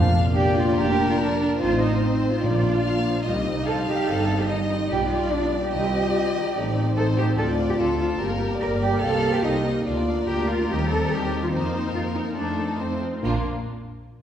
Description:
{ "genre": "quick classical-period movement for symphony orchestra", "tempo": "144 BPM", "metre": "4/4", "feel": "straight", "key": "Bb major", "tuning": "A4 = 438 Hz", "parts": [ { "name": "rich chamber violin section", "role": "melody", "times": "0.0-13.5 s", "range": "A4 to F5", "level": "-42 LUFS", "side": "left 5 dB", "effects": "none" }, { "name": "rich chamber violin section", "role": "second line", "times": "0.0-13.5 s", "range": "F4 to F5", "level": "-30 LUFS", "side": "left 3 dB", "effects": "none" }, { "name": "rich symphonic viola section", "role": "accompaniment", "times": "0.0-13.5 s", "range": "Eb3 to Bb4", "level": "-34 LUFS", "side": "right 1 dB", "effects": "none" }, { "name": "dark French horn section", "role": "sustained chords", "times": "0.0-13.4 s", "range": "G3 to G4", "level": "-27 LUFS", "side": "left 2 dB", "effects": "none" }, { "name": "rich studio double bass section", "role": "bass", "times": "0.0-13.5 s", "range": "F1 to F2", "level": "-27 LUFS", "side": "right 1 dB", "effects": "none" }, { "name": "timpani", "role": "percussion", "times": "0.0-3.0, 13.2-13.4 s", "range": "Bb2", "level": "-26 LUFS", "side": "equal", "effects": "none" }, { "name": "warm chamber cello section", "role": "bass", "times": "0.3-13.5 s", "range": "Bb3 to Bb4", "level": "-26 LUFS", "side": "right 2 dB", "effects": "none" } ], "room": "wet scoring stage reverb, RT60 1.5 s", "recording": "heard from further back in the room", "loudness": "-20 LUFS", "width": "side -10 dB against mid", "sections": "0.0-13.2 A section", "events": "none", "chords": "0.0 Bb; 1.6 F7/A; 2.4 Bb; 3.3 Cm; 4.9 G7/B; 5.7 Cm; 6.6 Adim; 7.4 Dm7; 8.2 Gm; 9.0 Cm7; 9.9 Bb/D; 10.7 Cm/Eb; 11.5 F7sus4; 12.4 F7; 13.2 Bb" }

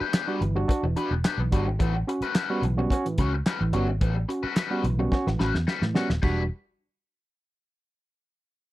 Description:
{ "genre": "funk", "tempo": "108 BPM", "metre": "4/4", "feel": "straight", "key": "E dorian", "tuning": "A4 = 440 Hz", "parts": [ { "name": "raw garage guitar", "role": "accompaniment", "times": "0.0-6.4 s", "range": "G3 to C#5", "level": "-32 LUFS", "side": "left 6 dB", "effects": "wah, overdrive" }, { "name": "vintage muted fingered electric bass", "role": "bass", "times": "0.0-6.5 s", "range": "D#1 to A2", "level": "-26 LUFS", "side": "equal", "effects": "none" }, { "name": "cloth-damped thuddy drum kit", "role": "drums", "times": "0.1-6.4 s", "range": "crash cymbal, handclaps, hi-hat, kick drum, snare drum", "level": "-25 LUFS", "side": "equal", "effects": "none" }, { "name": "overdriven tine electric piano", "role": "stabs", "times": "0.3-6.4 s", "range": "A2 to F#4", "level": "-28 LUFS", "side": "right 2 dB", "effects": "none" } ], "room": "little or no reverb", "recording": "dry, close 1970s-style studio recording", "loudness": "-23 LUFS", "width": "side -16 dB against mid", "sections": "0.0-6.2 A section; 6.2-8.5 B section", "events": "drum fill 5.1-6.2", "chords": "0.0 Em7; 1.8 A13; 6.2 Em7" }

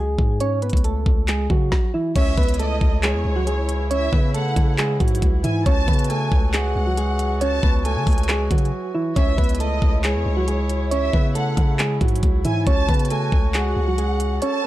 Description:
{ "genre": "hip hop, trap", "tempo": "137 BPM", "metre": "4/4", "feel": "half-time", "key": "unclear", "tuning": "A4 = 440 Hz", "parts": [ { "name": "soft electric-piano-like synth keys", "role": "melody", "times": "0.0-14.7 s", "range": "E3 to C#5", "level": "-24 LUFS", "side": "right 1 dB", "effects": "chorus, digital delay" }, { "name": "long sustained 808-style bass", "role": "bass", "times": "0.0-14.4 s", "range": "C#2 to C#3", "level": "-23 LUFS", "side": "equal", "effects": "none" }, { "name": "trap drum kit", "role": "drums", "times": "0.2-14.5 s", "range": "crash cymbal, handclaps, hi-hat, kick drum, rim click, snare drum", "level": "-20 LUFS", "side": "equal", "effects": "none" }, { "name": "warm studio violin section", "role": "second line", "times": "2.2-14.7 s", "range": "C#5 to A5", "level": "-29 LUFS", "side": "equal", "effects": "digital delay" }, { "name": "warm woodwind section", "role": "sustained chords", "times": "2.2-14.7 s", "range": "C#3 to A4", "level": "-32 LUFS", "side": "equal", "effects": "none" } ], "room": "little or no reverb", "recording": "dark, warm production", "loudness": "-18 LUFS", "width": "side -15 dB against mid", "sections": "0.0-2.2 A section; 2.2-14.7 B section", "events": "break 8.7-9.2; kick muted 14.4", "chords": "0.0 F#madd9/C#" }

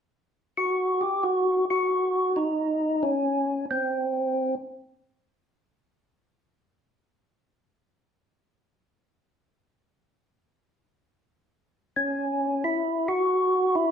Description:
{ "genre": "jazz", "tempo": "90 BPM", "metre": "4/4", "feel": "swing 67% on 8ths", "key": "unclear", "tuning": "A4 = 440 Hz", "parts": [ { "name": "percussive tonewheel organ", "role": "solo", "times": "0.6-4.6, 12.0-13.9 s", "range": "B#3 to G4", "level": "-23 LUFS", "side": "equal", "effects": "slow rotary speaker, overdrive" } ], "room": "wet club reverb, RT60 0.8 s", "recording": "heard from further back in the room", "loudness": "-23 LUFS", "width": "side -8 dB against mid", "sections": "0.0-1.2 A section; 1.2-11.9 B section; 11.9-13.9 C section", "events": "none", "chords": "none" }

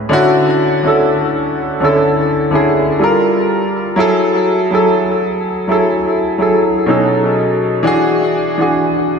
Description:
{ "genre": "R&B", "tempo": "62 BPM", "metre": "4/4", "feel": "swing 54% on 16ths", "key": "unclear", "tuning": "A4 = 440 Hz", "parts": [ { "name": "warm grand piano", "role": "solo", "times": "0.0-9.2 s", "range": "A2 to B4", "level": "-12 LUFS", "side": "equal", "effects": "analog chorus, ping-pong delay" } ], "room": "wet lush hall reverb, RT60 3.0 s", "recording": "dreamy mix soaked in reverb", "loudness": "-11 LUFS", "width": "side -6 dB against mid", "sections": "0.0-9.2 A section", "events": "none", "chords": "0.1 Dmaj9; 3.0 Gm9; 4.0 F#m9; 6.9 B13; 7.8 E9" }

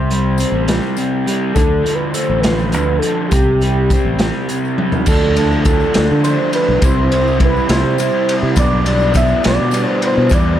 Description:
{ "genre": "indie rock", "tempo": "68 BPM (dotted quarters)", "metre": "6/8", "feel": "straight", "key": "D dorian", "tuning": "A4 = 440 Hz", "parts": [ { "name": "overdriven synth lead", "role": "melody", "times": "0.0-10.6 s", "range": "G4 to E5", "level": "-19 LUFS", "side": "equal", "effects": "chorus" }, { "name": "raw garage guitar", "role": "riff", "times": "0.0-10.6 s", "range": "B2 to E4", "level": "-18 LUFS", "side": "equal", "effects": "overdrive" }, { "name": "growling fingered electric bass", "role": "bass", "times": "0.0-10.6 s", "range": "A1 to D3", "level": "-17 LUFS", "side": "equal", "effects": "overdrive" }, { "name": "raw garage drum kit", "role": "drums", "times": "0.1-10.5 s", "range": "crash cymbal, hi-hat, kick drum, ride cymbal, snare drum, toms", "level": "-18 LUFS", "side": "equal", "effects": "none" }, { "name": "tambourine", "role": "percussion", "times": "0.4-10.4 s", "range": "none", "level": "-35 LUFS", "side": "left 14 dB", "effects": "none" } ], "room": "studio ambience", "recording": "dark, warm production", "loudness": "-12 LUFS", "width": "side -11 dB against mid", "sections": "0.0-5.1 A section; 5.1-10.6 B section", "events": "drum fill 4.8", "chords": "0.0 C5; 1.6 Dm; 3.3 C5; 5.1 Dm; 6.8 C; 8.6 G/B" }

